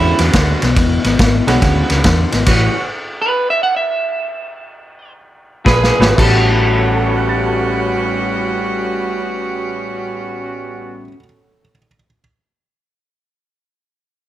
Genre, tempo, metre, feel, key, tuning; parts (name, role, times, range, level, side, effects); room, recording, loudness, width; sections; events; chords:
electric blues shuffle; 113-141 BPM; 4/4; swing 66% on 8ths; A mixolydian; A4 = 442 Hz
electric guitar through a small old amp; melody; 0.0-0.2, 3.2-11.1 s; E4 to F#5; -18 LUFS; right 2 dB
bright concert grand piano; accompaniment; 0.0-2.0, 6.0-12.2 s; A2 to A6; -22 LUFS; right 3 dB
electric guitar through a small old amp; riff; 0.0-2.7, 5.6-11.1 s; E2 to F#4; -20 LUFS; left 4 dB
hollow-body short-scale fingered electric bass; bass; 0.0-2.7, 5.7-11.1 s; E1 to E2; -17 LUFS; equal
mellow saxophone section; stabs; 0.2-2.8, 5.6-11.1 s; G3 to Ab4; -21 LUFS; right 2 dB
vintage drum kit; drums; 0.2-2.6, 5.7-6.3 s; crash cymbal, kick drum, ride cymbal, snare drum; -16 LUFS; equal
studio ambience; -13 LUFS; side -13 dB against mid
0.0-6.2 A section; 6.2-10.4 B section
slowing down 2.5-6.2; stop 2.5-5.7; drum fill 5.7-6.2
0.0 E13; 2.5 A13; 5.7 Bb9; 6.2 A13